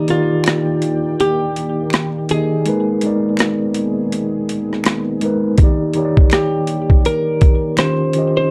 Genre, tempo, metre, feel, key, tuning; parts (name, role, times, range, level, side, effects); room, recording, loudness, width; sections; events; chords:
lo-fi hip hop; 82 BPM; 4/4; swing 60% on 16ths; Eb major; A4 = 445 Hz
hollow-body jazz guitar; melody; 0.0-8.5 s; F4 to C5; -22 LUFS; equal; low-pass filter, tape echo
mellow tine electric piano; accompaniment; 0.0-8.5 s; Eb3 to Eb5; -21 LUFS; equal; cassette tape, low-pass filter
dark analog pad; sustained chords; 0.0-8.5 s; Eb3 to G5; -29 LUFS; equal; chorus, low-pass filter
boom bap sampler-style drum kit; drums; 0.1-8.3 s; hi-hat, kick drum, rim click; -16 LUFS; equal
finger snap; percussion; 0.4-8.0 s; -31 LUFS; equal
moderate studio reverb, RT60 0.5 s; dark, warm production; -17 LUFS; mono
0.0-8.5 A section
break 0.0-5.6
0.0 Ebmaj7; 2.7 Abmadd9; 5.6 Ebmaj7; 7.8 Eb13